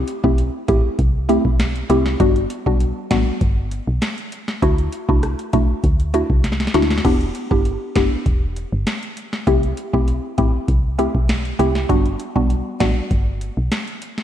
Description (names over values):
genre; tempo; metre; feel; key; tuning
dancehall; 99 BPM; 4/4; straight; G major; A4 = 439 Hz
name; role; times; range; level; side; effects
woody FM bass; bass; 0.0-13.7 s; E1 to D2; -21 LUFS; equal; none
booming analog drum machine; drums; 0.1-14.2 s; crash cymbal, hi-hat, kick drum, rim click, snare drum; -20 LUFS; equal; overdrive
mallet-like synth pluck; accompaniment; 0.2-13.1 s; G3 to G4; -20 LUFS; equal; chorus, phaser
room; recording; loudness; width
light reverb; cassette tape; -16 LUFS; side -10 dB against mid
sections
0.0-7.0 A section; 7.0-14.2 B section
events
drum fill 6.4-7.0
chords
0.0 C6; 2.2 Gmaj7; 4.6 Dadd9; 7.0 Em7; 9.5 C6; 11.9 Gmaj7